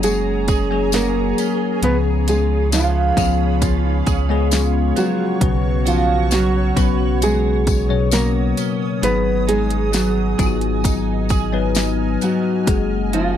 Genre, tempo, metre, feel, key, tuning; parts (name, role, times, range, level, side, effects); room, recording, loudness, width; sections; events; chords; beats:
pop ballad; 66 BPM; 4/4; straight; F# major; A4 = 444 Hz
nylon-string guitar; melody; 0.0-13.4 s; E#3 to B4; -21 LUFS; right 2 dB
mellow French horn section; second line; 0.0-13.4 s; B3 to G#4; -29 LUFS; right 12 dB
bell-like tine electric piano; accompaniment; 0.0-13.4 s; G#2 to C#5; -22 LUFS; left 10 dB; phaser
granular cloud pad; sustained chords; 0.0-13.4 s; G#4 to E#6; -29 LUFS; right 2 dB; built-in reverb
direct-recorded clean electric guitar; arpeggios; 0.0-13.4 s; G#2 to B4; -30 LUFS; right 18 dB; ensemble chorus
warm sub bass; bass; 0.0-13.4 s; F#1 to C#2; -20 LUFS; right 1 dB
pop drum kit; drums; 0.0-13.3 s; hi-hat, kick drum, snare drum; -20 LUFS; right 1 dB; overdrive
tambourine; percussion; 0.0-12.9 s; -29 LUFS; left 22 dB
little or no reverb; dry, close 1970s-style studio recording; -16 LUFS; side -10 dB against mid
0.0-13.4 A section
0.0 F#add9; 1.8 C#7; 5.4 Bsus2; 9.0 G#m7; 12.7 F#add9
0.03 0.93 | 1.82 2.72 3.61 4.51 | 5.41 6.31 7.21 8.12 | 9.03 9.93 10.84 11.76 | 12.67